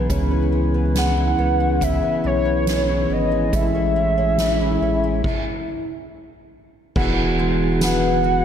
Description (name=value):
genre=dream pop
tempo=70 BPM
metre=4/4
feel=straight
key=E major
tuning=A4 = 438 Hz
part: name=mellow tonewheel organ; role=sustained chords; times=0.0-8.4 s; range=E3 to G#4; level=-24 LUFS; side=right 2 dB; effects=slow rotary speaker
part: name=fingerpicked twelve-string acoustic guitar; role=arpeggios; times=0.0-8.4 s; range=A2 to F#4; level=-25 LUFS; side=left 4 dB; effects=analog chorus, ping-pong delay
part: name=warm sub bass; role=bass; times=0.0-8.4 s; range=E1 to C#2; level=-23 LUFS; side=equal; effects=none
part: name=soft-mallet drum kit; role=drums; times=0.1-8.0 s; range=crash cymbal, hi-hat, kick drum, snare drum, tambourine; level=-26 LUFS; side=right 1 dB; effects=none
part: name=warbly nostalgic lead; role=melody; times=1.0-8.4 s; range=C#5 to F#5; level=-22 LUFS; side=equal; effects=chorus, ping-pong delay
room=moderate concert hall reverb, RT60 2.3 s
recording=none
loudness=-17 LUFS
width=side -8 dB against mid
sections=0.0-7.0 A section; 7.0-8.4 B section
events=stop 5.2-7.0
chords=0.1 C#m7; 3.5 Amaj7; 7.0 Eadd9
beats=| 0.10 0.96 1.81 2.67 | 3.53 4.39 5.24 6.10 | 6.96 7.82